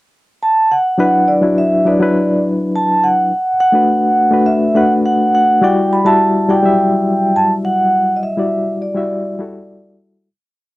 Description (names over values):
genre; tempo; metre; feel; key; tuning
soul; 104 BPM; 4/4; straight; unclear; A4 = 440 Hz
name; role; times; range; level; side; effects
vibraphone with soft mallets; melody; 0.4-9.9 s; D5 to B5; -14 LUFS; right 1 dB; none
barky reed electric piano; accompaniment; 1.0-10.3 s; F#3 to E5; -15 LUFS; left 2 dB; overdrive, fast tremolo
room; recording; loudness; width
little or no reverb; dry, close 1970s-style studio recording; -11 LUFS; side -19 dB against mid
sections
0.0-1.0 pickup bar; 1.0-10.3 verse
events
fade-out 7.9-10.3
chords
0.0 N.C.; 1.0 D69; 3.3 Bm7; 5.6 Em9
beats
0.41 | 0.99 1.57 2.15 2.73 | 3.31 3.89 4.47 5.05 | 5.63 6.21 6.79 7.37 | 7.95 8.53 9.11 9.69